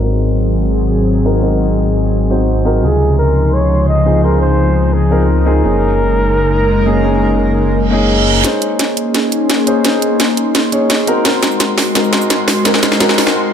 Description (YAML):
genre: liquid drum and bass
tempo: 171 BPM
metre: 4/4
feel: straight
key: Bb minor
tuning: A4 = 441 Hz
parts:
  - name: dark grand piano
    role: accompaniment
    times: 0.0-13.5 s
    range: C3 to Db5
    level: -17 LUFS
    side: left 2 dB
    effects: low-pass filter, dub echo
  - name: airy breathy pad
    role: sustained chords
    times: 0.0-13.5 s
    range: F3 to C6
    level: -17 LUFS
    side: equal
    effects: chorus
  - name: swelling detuned saw bass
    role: bass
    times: 0.0-8.4 s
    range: Gb1 to Db2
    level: -14 LUFS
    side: equal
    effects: none
  - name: drum and bass drum kit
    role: drums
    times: 0.0-13.3 s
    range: hi-hat, shaker, snare drum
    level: -15 LUFS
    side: right 1 dB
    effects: overdrive, high-pass filter on hats, low-pass filter on hats, high-pass filter on perc, low-pass filter on perc, high-pass filter on cymbals, low-pass filter on cymbals, high-pass filter on snare, low-pass filter on snare
  - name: breathy flugelhorn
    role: melody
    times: 2.8-8.1 s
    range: Ab4 to Eb5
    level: -18 LUFS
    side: right 1 dB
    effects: digital delay
  - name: reverse cymbal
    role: sound effects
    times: 7.9-8.4 s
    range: none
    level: -18 LUFS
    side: right 7 dB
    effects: none
room: light reverb, digital ambience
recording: low-pass filter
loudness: -11 LUFS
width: side -8 dB against mid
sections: 0.0-8.4 A section; 8.4-13.5 B section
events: filter sweep on grand piano 0.0-8.4; filter sweep 0.0-8.4; reverse cymbal 7.9-8.4; build-up 8.4-13.5; drum fill 8.4-13.4; filter sweep on analog synth pad 8.4-13.5; break 13.4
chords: 0.0 Ab7; 2.8 Dbmaj9; 5.6 Gb69; 8.4 Bbm11; 11.1 Ab7